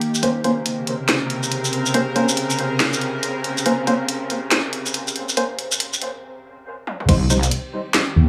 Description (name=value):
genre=deep dubstep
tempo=140 BPM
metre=4/4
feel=swing 61% on 16ths, half-time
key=unclear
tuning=A4 = 439 Hz
part: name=bowed-like drone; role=sustained chords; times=0.0-8.3 s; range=C3 to Bb4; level=-27 LUFS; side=equal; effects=built-in reverb
part: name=garage drum kit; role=drums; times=0.0-8.0 s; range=crash cymbal, handclaps, hi-hat, shaker, snare drum, toms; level=-24 LUFS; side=equal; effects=overdrive, small room ambience
part: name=percussive organ stab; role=stabs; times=0.2-7.4 s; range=G3 to C5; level=-26 LUFS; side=equal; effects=subtle chorus, dub echo
part: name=wobble bass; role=bass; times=7.1-8.3 s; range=C2 to Eb2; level=-18 LUFS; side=equal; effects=chorus
part: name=electronic kick drum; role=drums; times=7.1-7.2 s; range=none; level=-20 LUFS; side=equal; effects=overdrive, small room ambience
room=moderate spring reverb, RT60 1.4 s, digital ambience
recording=high-pass filter, small room ambience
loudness=-21 LUFS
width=mono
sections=0.0-7.1 A section; 7.1-8.3 B section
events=build-up 0.0-7.1; break 6.2-7.1; drum fill 6.9; drop 7.1-8.3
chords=0.2 Bbmadd9/C; 7.1 Cm